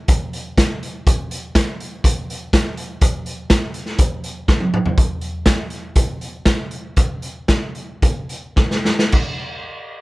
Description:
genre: rock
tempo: 104-123 BPM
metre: 4/4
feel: straight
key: none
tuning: none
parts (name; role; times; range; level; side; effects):
- raw garage drum kit; drums; 0.1-9.3 s; crash cymbal, hi-hat, kick drum, snare drum, toms; -17 LUFS; equal; none
room: little or no reverb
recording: none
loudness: -17 LUFS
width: side -21 dB against mid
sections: 0.0-5.0 A section; 5.0-9.1 B section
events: drum fill 4.5-5.0, 8.6-9.1; slowing down 5.0-9.1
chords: none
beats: 0.09 0.58 | 1.07 1.55 2.04 2.53 | 3.02 3.51 3.99 4.48 | 4.97 5.46 5.95 6.45 | 6.96 7.48 8.02 8.56 | 9.13

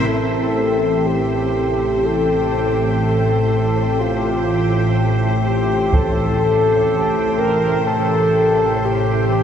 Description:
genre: dark ambient drone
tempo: 62 BPM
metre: 4/4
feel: straight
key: A minor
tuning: A4 = 440 Hz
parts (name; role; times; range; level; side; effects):
- mellow horn-like synth lead; melody; 0.0-9.4 s; F4 to Bb4; -19 LUFS; left 1 dB; analog chorus, diffuse ambient delay
- bright studio cello section; sustained chords; 0.0-9.4 s; C3 to E5; -27 LUFS; left 1 dB; none
- bronze singing bowl; arpeggios; 0.0-0.6 s; C4; -31 LUFS; left 2 dB; none
- organ-like drone; drone; 0.0-9.4 s; A1 to A2; -19 LUFS; equal; ensemble chorus, built-in reverb
- bubbling stepped-filter texture; texture; 0.0-9.4 s; E4 to G5; -25 LUFS; equal; chorus, built-in reverb
- taiko ensemble; percussion; 5.9-6.1 s; none; -24 LUFS; right 1 dB; low-pass filter on perc
room: wet cathedral reverb, RT60 6.1 s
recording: none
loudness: -15 LUFS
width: side -8 dB against mid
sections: 0.1-9.4 A section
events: fade-in on cello section 0.1-9.4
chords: 0.1 Am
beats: | 0.10 1.08 2.06 3.03 | 4.00 4.97 5.94 6.91 | 7.88 8.85

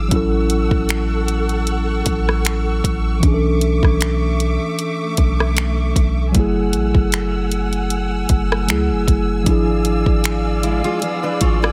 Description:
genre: contemporary R&B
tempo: 77 BPM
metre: 4/4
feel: swing 54% on 16ths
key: F# minor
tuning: A4 = 444 Hz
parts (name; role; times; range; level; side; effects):
- mellow tine electric piano; accompaniment; 0.0-11.7 s; E3 to A4; -23 LUFS; equal; none
- dark studio string section; sustained chords; 0.0-11.7 s; A3 to E6; -29 LUFS; equal; none
- long sustained 808-style bass; bass; 0.0-11.7 s; F#1 to C#2; -22 LUFS; equal; none
- smooth R&B drum kit; drums; 0.1-11.7 s; finger snaps, hi-hat, kick drum, rim click; -20 LUFS; equal; none
- fingerpicked steel-string acoustic guitar; arpeggios; 10.6-11.7 s; G#3 to D5; -24 LUFS; equal; digital delay
room: little or no reverb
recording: none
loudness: -18 LUFS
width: mono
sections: 0.0-11.7 A section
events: none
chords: 0.1 A6; 3.2 Bm11; 6.3 F#m9; 9.5 E7b9/G#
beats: | 0.12 0.89 1.67 2.45 | 3.23 4.01 4.79 5.57 | 6.35 7.13 7.91 8.69 | 9.46 10.24 11.02

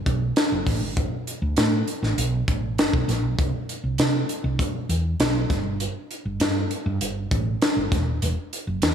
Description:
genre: polished 1980s jazz-funk pop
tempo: 99 BPM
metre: 4/4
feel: straight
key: unclear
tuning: A4 = 439 Hz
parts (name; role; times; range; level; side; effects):
- woody fretless electric bass; bass; 0.1-8.9 s; Eb1 to C3; -24 LUFS; right 1 dB; none
- crisp fusion drum kit; drums; 0.1-8.9 s; hi-hat, kick drum, snare drum; -23 LUFS; equal; none
room: moderate concert hall reverb, RT60 2.0 s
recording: big arena sound, small room ambience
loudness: -22 LUFS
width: side -8 dB against mid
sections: 0.0-8.9 A section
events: none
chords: none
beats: 0.36 | 0.97 1.57 2.17 2.78 | 3.38 3.99 4.59 5.20 | 5.80 6.41 7.01 7.62 | 8.22 8.83

